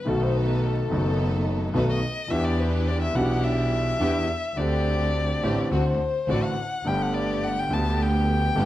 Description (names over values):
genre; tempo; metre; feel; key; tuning
tango; 106 BPM; 4/4; rubato; G major; A4 = 440 Hz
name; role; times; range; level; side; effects
warm violin; second line; 0.0-8.7 s; A4 to A5; -28 LUFS; left 3 dB; none
warm concert grand piano; accompaniment; 0.0-8.7 s; F#1 to G4; -26 LUFS; equal; none
clear symphonic string section; stabs; 0.1-8.7 s; A3 to A4; -32 LUFS; right 1 dB; none
warm double bass; bass; 0.1-8.7 s; F#1 to E2; -27 LUFS; equal; none
room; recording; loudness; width
light reverb; dark, warm production, vinyl crackle; -22 LUFS; side -14 dB against mid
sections
0.0-8.7 A section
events
violin solo 0.0-8.7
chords
0.1 B7; 2.3 Em7; 4.6 D7sus4; 5.7 D7; 6.9 Gadd9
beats
| 0.07 0.63 1.19 1.75 | 2.31 2.88 3.44 4.01 | 4.58 5.15 5.72 6.29 | 6.86 7.43 8.00 8.57